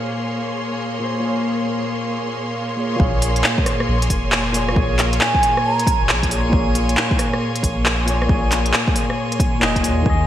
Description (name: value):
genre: future garage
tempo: 136 BPM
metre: 4/4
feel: swing 64% on 16ths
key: Bb minor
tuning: A4 = 441 Hz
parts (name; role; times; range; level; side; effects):
- tine electric piano; accompaniment; 0.0-10.3 s; Bb2 to Eb5; -23 LUFS; left 1 dB; overdrive, wide subtle chorus, sidechain pumping, ping-pong delay
- bright symphonic string section; sustained chords; 0.0-10.3 s; Bb2 to C6; -25 LUFS; equal; vintage 12-bit sampler grit, sidechain pumping
- drifting glass-harmonics texture; texture; 0.0-10.3 s; F5 to Ab5; -30 LUFS; right 1 dB; chorus, built-in reverb
- soft dub sub bass; bass; 3.0-10.3 s; F1 to Eb2; -22 LUFS; equal; sidechain pumping
- electronic kick drum; drums; 3.0-10.2 s; none; -20 LUFS; equal; overdrive, studio reverb
- organic electronic drum kit; drums; 3.2-10.0 s; handclaps, hi-hat, rim click; -21 LUFS; equal; overdrive, studio reverb, gated reverb
- mellow hollow wooden flute; melody; 5.2-6.0 s; Ab5 to Bb5; -21 LUFS; right 2 dB; ping-pong delay
room: wet plate reverb, RT60 1.6 s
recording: bright 1980s-style digital production, vinyl crackle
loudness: -16 LUFS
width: side -11 dB against mid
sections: 0.0-3.0 A section; 3.0-10.3 B section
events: filter sweep on tine electric piano 0.0-3.0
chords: 0.0 Bbm7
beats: 0.35 0.80 | 1.24 1.68 2.12 2.56 | 3.00 3.44 3.88 4.33 | 4.77 5.21 5.65 6.09 | 6.53 6.97 7.41 7.86 | 8.30 8.74 9.18 9.62 | 10.06